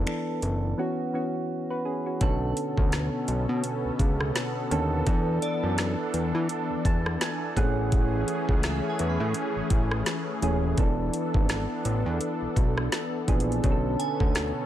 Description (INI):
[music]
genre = contemporary R&B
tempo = 84 BPM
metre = 4/4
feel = swing 58% on 16ths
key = B dorian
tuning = A4 = 441 Hz
[part]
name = soft electric-piano-like synth keys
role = accompaniment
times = 0.0-14.7 s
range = D3 to A5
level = -30 LUFS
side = right 2 dB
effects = chorus
[part]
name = fat analog bass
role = bass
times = 0.0-14.5 s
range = D#1 to E3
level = -28 LUFS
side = equal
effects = none
[part]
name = smooth R&B drum kit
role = drums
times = 0.1-14.5 s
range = finger snaps, hi-hat, kick drum, rim click, snare drum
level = -27 LUFS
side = equal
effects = none
[part]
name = warm analog pad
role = sustained chords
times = 2.6-14.7 s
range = B2 to A4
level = -32 LUFS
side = left 2 dB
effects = chorus
[part]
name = glassy synth bell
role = texture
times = 2.2-14.7 s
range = D5 to B5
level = -38 LUFS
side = right 2 dB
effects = chorus, phaser, tape echo
[sound]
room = little or no reverb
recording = none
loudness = -24 LUFS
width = side -12 dB against mid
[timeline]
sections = 0.0-2.2 A section; 2.2-14.7 B section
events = drums muted 0.8-2.2; synth keys fill 6.5-7.9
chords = 0.0 E7sus4; 0.8 F#7sus4; 2.2 Bm9; 5.1 E7sus4; 7.6 Amaj7; 10.8 E7sus4; 13.6 Bm9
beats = 0.07 0.78 1.49 | 2.21 2.92 3.64 4.35 | 5.07 5.78 6.49 7.21 | 7.92 8.64 9.35 10.07 | 10.78 11.49 12.21 12.92 | 13.64 14.35